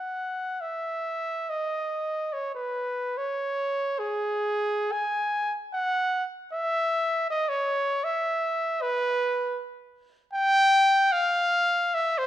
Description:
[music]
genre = classical, free, expressive piece for unaccompanied trumpet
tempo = 50-80 BPM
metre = 3/4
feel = rubato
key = C# minor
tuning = A4 = 440 Hz
[part]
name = warm trumpet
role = solo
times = 0.0-12.3 s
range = G#4 to G#5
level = -24 LUFS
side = equal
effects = none
[sound]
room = moderate recital hall reverb, RT60 1.4 s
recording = none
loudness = -24 LUFS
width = side -12 dB against mid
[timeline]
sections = 0.6-12.3 A section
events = none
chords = none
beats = | 0.62 1.48 2.32 | 3.15 3.98 4.92 | 5.74 6.51 7.29 | 8.05 8.82 9.60 | 10.35 11.13 11.94

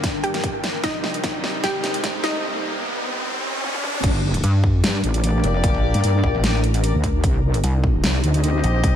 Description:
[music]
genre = heavy wobble dubstep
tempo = 150 BPM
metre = 4/4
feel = half-time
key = G minor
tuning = A4 = 441 Hz
[part]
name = wide unison pluck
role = melody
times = 0.0-2.4 s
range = D4 to G5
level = -27 LUFS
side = equal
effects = digital delay
[part]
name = supersaw pad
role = sustained chords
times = 0.0-4.0 s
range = G2 to Eb4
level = -30 LUFS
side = equal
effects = sidechain pumping
[part]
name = dubstep drum kit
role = drums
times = 0.0-8.9 s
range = crash cymbal, hi-hat, snare drum, toms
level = -26 LUFS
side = equal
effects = high-pass filter on hats, studio reverb, high-pass filter on snare, high-pass filter on toms, high-pass filter on cymbals
[part]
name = electronic kick drum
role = drums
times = 0.0-8.9 s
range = none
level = -23 LUFS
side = equal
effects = studio reverb
[part]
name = riser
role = sound effects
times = 0.2-4.0 s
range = none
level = -28 LUFS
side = right 1 dB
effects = none
[part]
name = ethereal airy pad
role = texture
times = 0.0-9.0 s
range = D4 to G5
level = -30 LUFS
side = left 1 dB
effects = ensemble chorus, built-in reverb, sidechain pumping
[part]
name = wobble bass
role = bass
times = 4.0-8.9 s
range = G1 to G2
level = -19 LUFS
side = equal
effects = chorus, overdrive
[part]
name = pulsing pluck wobble bass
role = bass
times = 4.4-8.8 s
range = F1 to G2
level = -18 LUFS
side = equal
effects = chorus, overdrive
[part]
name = clear brass ensemble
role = stabs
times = 5.0-9.0 s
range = Bb3 to Eb5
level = -27 LUFS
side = left 5 dB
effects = digital delay
[sound]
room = light reverb, digital ambience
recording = high-pass filter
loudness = -18 LUFS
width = side -10 dB against mid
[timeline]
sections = 0.0-4.0 A section; 4.0-9.0 B section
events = build-up 0.0-4.0; drum fill 0.0-2.4, 3.6-4.0; riser 0.2-4.0; break 2.4-4.0; drop 4.0-9.0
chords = 0.0 Gm; 0.8 Cm; 4.0 Gm; 7.2 Cm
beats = 0.04 0.44 | 0.84 1.24 1.64 2.04 | 2.44 2.84 3.24 3.64 | 4.04 4.44 4.84 5.24 | 5.64 6.04 6.44 6.84 | 7.24 7.64 8.04 8.44 | 8.84

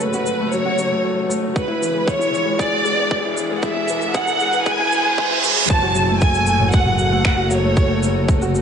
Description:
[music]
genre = piano and strings electronica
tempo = 116 BPM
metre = 4/4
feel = straight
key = F# minor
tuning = A4 = 440 Hz
[part]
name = dark symphonic violin section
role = melody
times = 0.0-8.3 s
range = B4 to A5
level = -20 LUFS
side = right 1 dB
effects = ping-pong delay
[part]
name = granular cloud pad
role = sustained chords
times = 0.0-8.6 s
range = B2 to B4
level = -30 LUFS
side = equal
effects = built-in reverb
[part]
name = felt-muted upright piano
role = riff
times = 0.0-8.6 s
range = E3 to C#5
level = -22 LUFS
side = left 2 dB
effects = none
[part]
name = clear chamber double bass section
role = bass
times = 0.0-8.6 s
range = E1 to F#1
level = -25 LUFS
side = equal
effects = sidechain pumping, high-pass filter
[part]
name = organic electronic drum kit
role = drums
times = 0.0-8.6 s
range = finger snaps, shaker, toms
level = -26 LUFS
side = right 2 dB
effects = overdrive
[part]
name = riser and reverse cymbal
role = sound effects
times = 2.3-5.7 s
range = none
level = -25 LUFS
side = right 5 dB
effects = none
[part]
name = electronic kick drum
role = drums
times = 1.6-8.4 s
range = none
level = -20 LUFS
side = equal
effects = overdrive
[sound]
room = light reverb, digital ambience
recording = high-pass filter, nothing above 10.3 kHz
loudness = -16 LUFS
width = side -7 dB against mid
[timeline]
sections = 0.0-5.7 A section; 5.7-8.6 B section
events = build-up 0.0-5.7; filter sweep 0.0-5.7; riser 2.3-5.7; reverse cymbal 4.7-5.7; drop 5.7-8.6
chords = 0.0 F#m; 1.6 E; 5.7 F#m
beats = 0.01 0.53 1.04 | 1.56 2.08 2.59 3.11 | 3.63 4.14 4.66 5.18 | 5.70 6.21 6.73 7.25 | 7.77 8.28

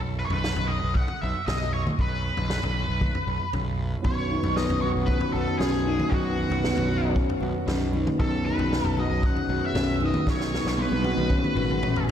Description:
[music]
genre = psychedelic rock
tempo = 116 BPM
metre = 4/4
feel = straight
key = B major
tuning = A4 = 442 Hz
[part]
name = fuzz picked electric bass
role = bass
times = 0.0-12.1 s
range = G#1 to B1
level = -29 LUFS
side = equal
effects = overdrive
[part]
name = octave-fuzz lead guitar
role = melody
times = 0.2-12.0 s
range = F#4 to F#5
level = -30 LUFS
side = left 1 dB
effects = wah, distortion, ping-pong delay
[part]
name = vintage drum kit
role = drums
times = 0.3-12.1 s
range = kick drum, snare drum, toms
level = -28 LUFS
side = equal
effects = none
[part]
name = percussive tonewheel organ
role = sustained chords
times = 4.0-12.1 s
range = D#3 to B4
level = -32 LUFS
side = right 4 dB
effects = slow rotary speaker, chorus vibrato
[part]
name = electric guitar through a small old amp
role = riff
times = 4.0-12.1 s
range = B2 to F#4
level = -27 LUFS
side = left 2 dB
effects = rotary speaker
[part]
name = congas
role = percussion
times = 4.4-12.1 s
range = none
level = -40 LUFS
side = left 4 dB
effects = none
[sound]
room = moderate lush hall reverb, RT60 1.6 s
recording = dreamy mix soaked in reverb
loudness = -23 LUFS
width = side -9 dB against mid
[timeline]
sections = 0.0-12.1 A section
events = drum fill 10.3-12.1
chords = 0.0 Badd9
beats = 0.44 0.95 1.47 | 1.99 2.50 3.02 3.54 | 4.05 4.57 5.09 5.61 | 6.12 6.64 7.16 7.68 | 8.19 8.71 9.23 9.75 | 10.27 10.78 11.30 11.82

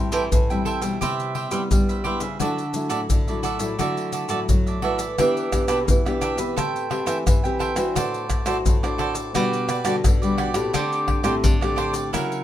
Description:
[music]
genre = samba and choro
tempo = 86 BPM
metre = 4/4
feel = straight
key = unclear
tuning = A4 = 440 Hz
[part]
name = cavaquinho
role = accompaniment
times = 0.0-12.4 s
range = D4 to G5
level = -27 LUFS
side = right 4 dB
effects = none
[part]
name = nylon-string guitar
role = accompaniment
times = 0.0-12.4 s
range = G2 to C5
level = -27 LUFS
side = left 3 dB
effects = none
[part]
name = nylon-string guitar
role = bass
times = 0.0-12.4 s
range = A2 to G3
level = -28 LUFS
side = right 2 dB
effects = none
[part]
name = maracas, pandeiro, surdo and tamborim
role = percussion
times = 0.1-12.4 s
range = none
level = -23 LUFS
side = left 1 dB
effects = none
[sound]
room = light reverb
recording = minimal, uncompressed stereo recording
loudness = -20 LUFS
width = side -12 dB against mid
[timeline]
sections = 0.0-5.2 A section; 5.2-12.4 B section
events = none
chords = 0.0 Am7; 1.0 Cmaj7; 2.4 Dadd9; 5.2 Em7; 6.6 Am9; 8.0 D7/A; 9.3 Gmaj7/B; 10.7 D7sus4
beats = 0.32 1.02 1.71 | 2.41 3.10 3.79 4.49 | 5.18 5.88 6.57 7.27 | 7.96 8.66 9.35 10.04 | 10.74 11.44 12.13

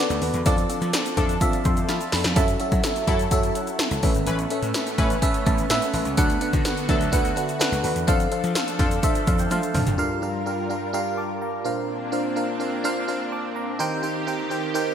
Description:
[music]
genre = 1980s-style pop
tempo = 126 BPM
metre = 4/4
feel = straight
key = unclear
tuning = A4 = 440 Hz
[part]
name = FM electric piano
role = accompaniment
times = 0.0-14.9 s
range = G2 to D6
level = -25 LUFS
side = right 1 dB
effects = chorus, phaser, shimmer reverb
[part]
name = lush unison pad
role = sustained chords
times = 0.0-14.9 s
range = D3 to Bb4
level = -30 LUFS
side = equal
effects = chorus, phaser, shimmer reverb
[part]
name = gritty slap bass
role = bass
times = 0.1-10.0 s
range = F#1 to F#3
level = -27 LUFS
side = equal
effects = overdrive
[part]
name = 80s electronic pad drums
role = drums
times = 0.1-10.0 s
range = hi-hat, kick drum, snare drum, tambourine, toms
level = -23 LUFS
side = equal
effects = gated reverb on snare and toms
[part]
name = egg shaker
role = percussion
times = 0.1-10.0 s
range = none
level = -40 LUFS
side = left 8 dB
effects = none
[part]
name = funky polysynth comp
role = stabs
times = 0.5-9.0 s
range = E3 to B4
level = -33 LUFS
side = left 2 dB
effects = chorus, shimmer reverb
[sound]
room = moderate lush hall reverb, RT60 1.7 s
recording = bright 1980s-style digital production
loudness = -21 LUFS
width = side -8 dB against mid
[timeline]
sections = 0.0-10.0 A section; 10.0-14.9 A section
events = FM electric piano fill 0.9-2.4, 5.2-6.2, 9.0-10.0; drum fill 1.9-2.4, 9.5-10.0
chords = 0.5 F6; 2.4 F#m7; 4.0 Aadd9; 6.2 D6; 8.1 F6; 10.0 Gm7; 11.7 Bbadd9; 13.8 Eb6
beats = | 0.46 0.94 1.41 1.89 | 2.37 2.84 3.32 3.79 | 4.27 4.75 5.22 5.70 | 6.18 6.65 7.13 7.60 | 8.08 8.56 9.03 9.51 | 9.98 10.46 10.94 11.41 | 11.89 12.37 12.84 13.32 | 13.79 14.27 14.75

